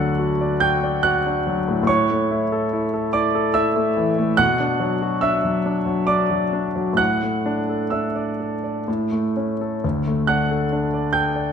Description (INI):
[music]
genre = classical, romantic nocturne for solo piano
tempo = 61-74 BPM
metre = 3/4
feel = rubato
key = D major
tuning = A4 = 440 Hz
[part]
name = clear concert grand piano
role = solo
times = 0.0-11.5 s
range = D2 to G6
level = -18 LUFS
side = equal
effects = none
[sound]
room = wet recital hall reverb, RT60 1.5 s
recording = none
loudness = -18 LUFS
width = side -7 dB against mid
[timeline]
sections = 0.0-11.5 A section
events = none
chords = 0.0 D; 1.9 A; 4.4 Bm; 7.0 Asus4; 8.9 A; 9.8 D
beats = 0.18 1.04 | 1.88 2.72 3.54 | 4.38 5.22 6.08 | 6.98 7.92 8.87 | 9.84 10.72